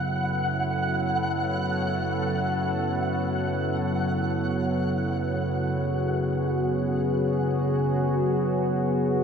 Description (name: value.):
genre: dark ambient drone.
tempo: free time.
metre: none.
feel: none.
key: F# minor.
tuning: A4 = 440 Hz.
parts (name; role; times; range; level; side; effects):
deep dark ambient pad; sustained chords; 0.0-9.2 s; F#3 to C#5; -26 LUFS; equal; chorus, built-in reverb.
deep rumbling drone; drone; 0.0-9.2 s; F#2 to C#3; -28 LUFS; right 1 dB; built-in reverb.
flickering grainy texture; texture; 0.0-9.2 s; F#5; -31 LUFS; equal; built-in reverb, wide subtle chorus.
room: wet huge ambient reverb, RT60 9.0 s.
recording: dreamy mix soaked in reverb.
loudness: -23 LUFS.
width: side -6 dB against mid.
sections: 0.0-9.2 A section.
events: fade-in on ambient pad 0.0-9.2; fade-out on synth texture 0.0-9.2.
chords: 0.0 F#madd9.